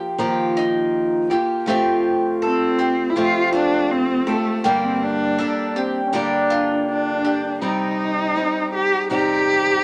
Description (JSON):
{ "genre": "acoustic folk duo or small band", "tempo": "81 BPM", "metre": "4/4", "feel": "straight", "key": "unclear", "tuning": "A4 = 440 Hz", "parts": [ { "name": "picked steel-string acoustic guitar", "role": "accompaniment", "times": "0.0-9.8 s", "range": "G2 to G4", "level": "-23 LUFS", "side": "equal", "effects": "none" }, { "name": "bowl-back mandolin", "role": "arpeggios", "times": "0.0-7.6 s", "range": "Eb4 to A4", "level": "-27 LUFS", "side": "equal", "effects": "none" }, { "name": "warm cello", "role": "melody", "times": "2.4-9.8 s", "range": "A3 to G4", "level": "-23 LUFS", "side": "equal", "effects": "none" }, { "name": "bright reedy alto flute", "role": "second line", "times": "5.8-7.6 s", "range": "C4 to D4", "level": "-27 LUFS", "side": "equal", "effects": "none" } ], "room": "moderate studio reverb, RT60 0.5 s", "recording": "none", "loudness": "-20 LUFS", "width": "mono", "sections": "0.0-7.6 A section; 7.6-9.8 B section", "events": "cello solo 0.0-7.6", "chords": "0.0 Ebadd9; 1.7 Fadd9; 4.7 Gm; 7.6 Cm", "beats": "0.20 0.94 | 1.68 2.42 3.17 3.91 | 4.65 5.39 6.13 6.88 | 7.62 8.36 9.10" }